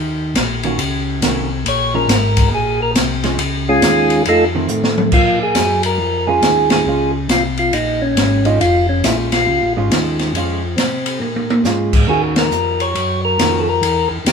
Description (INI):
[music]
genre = soul jazz organ trio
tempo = 138 BPM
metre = 4/4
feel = swing 65% on 8ths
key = Bb minor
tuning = A4 = 439 Hz
[part]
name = tonewheel organ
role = bass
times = 0.0-14.3 s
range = F1 to C3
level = -20 LUFS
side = left 1 dB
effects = slow rotary speaker
[part]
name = open jazz drum kit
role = drums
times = 0.4-14.3 s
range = crash cymbal, hi-hat, kick drum, ride cymbal, snare drum, toms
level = -18 LUFS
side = equal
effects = none
[part]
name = hollow-body jazz guitar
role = accompaniment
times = 0.6-13.7 s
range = Eb3 to Gb4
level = -23 LUFS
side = right 3 dB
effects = none
[part]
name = percussive tonewheel organ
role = melody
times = 1.7-14.3 s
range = Ab3 to Db5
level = -16 LUFS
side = equal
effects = slow rotary speaker
[sound]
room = light reverb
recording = band playing live in one room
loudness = -13 LUFS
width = side -6 dB against mid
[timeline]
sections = 0.0-5.1 A section; 5.1-14.3 B section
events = tonewheel organ solo 0.0-5.1; drum fill 4.7-5.1, 11.2-11.7; band accent 6.6, 12.3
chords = 0.0 Ebm7; 1.7 Bbm7; 4.3 F7; 5.1 Bbm7; 12.1 Ebm7